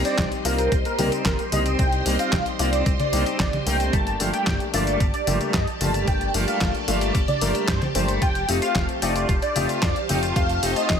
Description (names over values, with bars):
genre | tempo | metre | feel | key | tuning
italo disco | 112 BPM | 4/4 | straight | C dorian | A4 = 442 Hz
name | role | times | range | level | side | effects
wide unison lead | melody | 0.0-11.0 s | Bb4 to A5 | -26 LUFS | right 1 dB | ensemble chorus, cassette tape, tape echo
phased string machine | sustained chords | 0.0-11.0 s | G4 to C6 | -30 LUFS | equal | ensemble chorus, phaser
electric guitar with an envelope filter | arpeggios | 0.0-11.0 s | F3 to F4 | -30 LUFS | right 3 dB | tremolo, ping-pong delay
warm concert grand piano | stabs | 0.0-11.0 s | G3 to Bb4 | -28 LUFS | left 6 dB | none
chorused synth bass | bass | 0.0-11.0 s | F1 to G2 | -27 LUFS | equal | none
detuned 8-bit digital drum machine | drums | 0.0-11.0 s | congas, handclaps, hi-hat, snare drum, tambourine | -27 LUFS | left 1 dB | none
electronic kick drum | drums | 0.2-11.0 s | none | -25 LUFS | equal | none
room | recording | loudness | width
light reverb | none | -20 LUFS | side -7 dB against mid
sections
0.0-11.0 A section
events
none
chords
0.0 Cm; 3.9 Gmadd9; 8.2 Fadd9